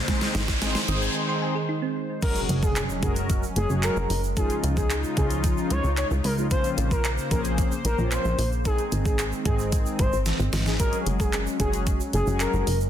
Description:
dance-pop; 112 BPM; 4/4; straight; A4 = 441 Hz
lush unison pad; sustained chords; 0.0-12.9 s; Db3 to C5; -33 LUFS; equal; chorus, sidechain pumping
riser and impact; sound effects; 0.0-4.4 s; -32 LUFS; equal
mellow synth brass; accompaniment; 0.1-12.7 s; Eb3 to C5; -31 LUFS; left 2 dB; chorus, sidechain pumping
thumb-piano-like synth pluck; arpeggios; 0.1-1.9 s; Ab3 to Ab6; -32 LUFS; right 5 dB; chorus, sidechain pumping, tape echo
pop drum kit; drums; 0.1-12.8 s; crash cymbal, handclaps, hi-hat, kick drum, snare drum; -26 LUFS; equal; overdrive
tube shaker; percussion; 0.1-12.9 s; -41 LUFS; right 9 dB
plucky analog bass; bass; 0.3-12.9 s; Gb1 to Db2; -26 LUFS; equal; sidechain pumping
expressive portamento lead; melody; 2.2-12.8 s; Ab4 to Db5; -30 LUFS; equal; chorus, tape echo
light reverb; dense, heavily limited modern master; -22 LUFS; side -10 dB against mid
0.0-2.2 A section; 2.2-12.9 B section
build-up 0.0-2.2; drum fill 0.0-1.2, 10.3-10.8; riser 0.0-2.2; break 1.2-2.2; drop 2.2-12.9; impact 2.2-4.4
0.1 Ab; 2.2 Gbsus2; 4.4 Dbadd9; 6.5 Bbmadd9; 8.7 Ab; 10.8 Gbsus2
| 0.08 0.62 1.15 1.69 | 2.23 2.76 3.30 3.83 | 4.37 4.90 5.44 5.97 | 6.51 7.05 7.58 8.12 | 8.65 9.19 9.72 10.26 | 10.80 11.33 11.87 12.40

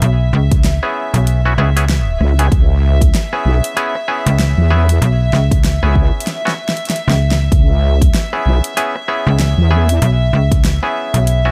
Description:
glitch hop; 96 BPM; 4/4; swing 59% on 16ths; C# minor; A4 = 440 Hz
slap-like FM bass; bass; 0.0-11.5 s; B1 to C#2; -16 LUFS; equal
pop drum kit; drums; 0.0-11.4 s; hi-hat, rim click, snare drum; -24 LUFS; equal
dark studio string section; texture; 0.0-11.5 s; E5; -26 LUFS; equal; sidechain pumping
electronic kick drum; drums; 0.5-10.6 s; -16 LUFS; equal
bright clav; stabs; 0.8-11.5 s; B3 to G#4; -23 LUFS; equal; vintage 12-bit sampler grit, sidechain pumping, tape echo
wobble bass; bass; 2.2-10.0 s; B1 to E2; -14 LUFS; equal; chorus
digital ambience; -14 LUFS; mono
0.0-11.5 A section
drum fill 6.3-7.5
0.0 C#m7
| 0.02 0.64 1.27 1.89 | 2.52 3.14 3.77 4.39 | 5.02 5.64 6.27 6.89 | 7.52 8.14 8.77 9.39 | 10.02 10.64 11.27

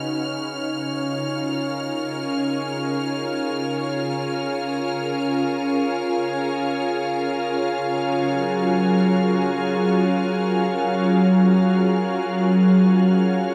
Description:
ambient; free time; A4 = 441 Hz
soft additive organ-like pad; sustained chords; 0.0-13.5 s; C#3 to A#4; -22 LUFS; equal; ensemble chorus, built-in reverb
bright studio violin section; texture; 0.0-13.5 s; E#6; -36 LUFS; equal
wet cathedral reverb, RT60 5.6 s; in a vast, echoing space; -21 LUFS; mono
0.0-13.5 A section
0.1 A#m7/C#; 7.9 F#maj7
free time

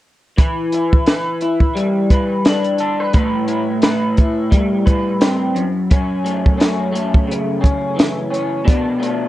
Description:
indie pop, bedroom pop; 87 BPM; 4/4; swing 55% on 16ths; E minor; A4 = 441 Hz
electric guitar through a small old amp; accompaniment; 0.4-9.3 s; F#2 to B4; -17 LUFS; left 1 dB; analog chorus, warbly pitch drift, plate reverb
compact cocktail drum kit; drums; 0.4-9.2 s; hi-hat, kick drum, snare drum; -14 LUFS; equal; vintage 12-bit sampler grit
light reverb; worn, warbling old tape, cassette tape, warbly pitch drift; -14 LUFS; side -15 dB against mid
0.4-9.3 A section
0.4 Em7; 3.1 Am9; 5.6 F#m7; 8.7 Bm7
| 0.38 1.07 1.76 2.46 | 3.15 3.84 4.53 5.22 | 5.91 6.60 7.29 7.98 | 8.67

